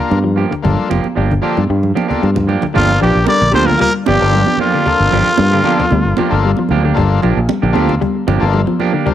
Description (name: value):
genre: afrobeat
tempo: 114 BPM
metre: 4/4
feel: straight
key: G minor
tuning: A4 = 441 Hz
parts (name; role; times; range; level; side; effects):
- combo organ; accompaniment; 0.0-9.1 s; Bb3 to C5; -22 LUFS; left 7 dB; spring reverb, cassette tape, plate reverb
- clean electric guitar; arpeggios; 0.0-9.1 s; D3 to G3; -20 LUFS; left 8 dB; cassette tape, tape echo
- clean electric guitar; stabs; 0.0-9.1 s; F3 to G4; -20 LUFS; right 8 dB; cassette tape, plate reverb
- fingered electric bass; bass; 0.1-8.6 s; F1 to G2; -15 LUFS; equal; none
- cajon; drums; 0.1-9.1 s; none; -24 LUFS; equal; cassette tape
- congas; percussion; 0.1-8.9 s; none; -22 LUFS; right 8 dB; none
- breathy alto saxophone; second line; 2.7-6.7 s; Bb3 to Bb4; -24 LUFS; right 7 dB; cassette tape, plate reverb
- growling trumpet; melody; 2.8-6.7 s; F4 to D5; -15 LUFS; equal; cassette tape, plate reverb
- raspy baritone saxophone; second line; 2.8-6.7 s; F2 to D3; -23 LUFS; left 8 dB; cassette tape, plate reverb
room: light reverb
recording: home recording on cassette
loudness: -11 LUFS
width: side -11 dB against mid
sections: 0.0-2.8 A section; 2.8-9.1 B section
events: drum fill 2.2-2.8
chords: 0.0 Gm7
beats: 0.11 | 0.64 1.17 1.70 2.22 | 2.75 3.28 3.81 4.33 | 4.86 5.38 5.91 6.43 | 6.96 7.48 8.01 8.53 | 9.06